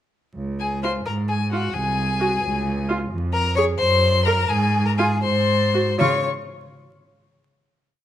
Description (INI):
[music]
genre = quick classical-period movement for string quartet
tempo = 77-89 BPM (dotted quarters)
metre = 6/8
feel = rubato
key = Db major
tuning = A4 = 441 Hz
[part]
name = clear cello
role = bass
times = 0.4-6.3 s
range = C2 to Db3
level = -23 LUFS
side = right 1 dB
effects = none
[part]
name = clear violin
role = melody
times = 0.6-6.3 s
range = Gb5 to Db6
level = -25 LUFS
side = left 7 dB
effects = none
[part]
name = clear violin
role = second line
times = 0.6-6.2 s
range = Gb4 to Db5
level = -24 LUFS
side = left 3 dB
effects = none
[part]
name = rich viola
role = accompaniment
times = 0.8-6.3 s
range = F4 to Bb4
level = -26 LUFS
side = right 3 dB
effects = none
[sound]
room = moderate recital hall reverb, RT60 1.6 s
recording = close, detailed microphones, vinyl crackle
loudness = -18 LUFS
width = side -11 dB against mid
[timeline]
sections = 0.4-6.0 A section; 6.0-7.4 final chord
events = none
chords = 0.4 Db; 1.7 Ab7/C; 2.4 Db; 3.1 Bbm7/F; 3.8 Gb; 4.5 Absus2; 5.2 Ab7; 6.0 Db